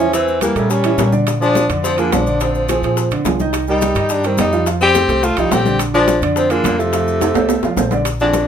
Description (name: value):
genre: Afro-Cuban jazz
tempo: 212 BPM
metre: 4/4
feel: straight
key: unclear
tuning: A4 = 440 Hz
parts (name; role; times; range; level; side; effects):
- breathy tenor saxophone; melody; 0.0-8.5 s; A3 to G4; -18 LUFS; left 1 dB; none
- warm baritone saxophone; second line; 0.0-8.5 s; F2 to C4; -21 LUFS; left 3 dB; none
- warm concert grand piano; accompaniment; 0.0-8.4 s; D3 to F5; -20 LUFS; right 4 dB; none
- upright bass; bass; 0.0-8.4 s; Bb1 to Bb2; -22 LUFS; equal; none
- bongos; percussion; 0.1-8.5 s; none; -25 LUFS; left 9 dB; none
- congas; percussion; 0.1-8.5 s; none; -25 LUFS; left 4 dB; none
- maracas; percussion; 0.1-8.5 s; none; -31 LUFS; left 4 dB; none
- timbales; percussion; 0.1-8.5 s; none; -23 LUFS; right 8 dB; none
room: moderate studio ambience, RT60 0.5 s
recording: minimal, uncompressed stereo recording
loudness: -13 LUFS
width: side -8 dB against mid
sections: 0.0-8.1 A section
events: drum fill 7.2-8.1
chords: 0.1 Edim7; 1.3 Bb9; 3.5 Cm7; 4.7 Fadd9; 5.8 Bb7; 6.9 F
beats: | 0.14 0.42 0.70 0.99 | 1.27 1.55 1.83 2.12 | 2.40 2.69 2.97 3.25 | 3.53 3.82 4.10 4.38 | 4.67 4.95 5.23 5.52 | 5.80 6.08 6.37 6.65 | 6.93 7.21 7.50 7.78 | 8.06 8.34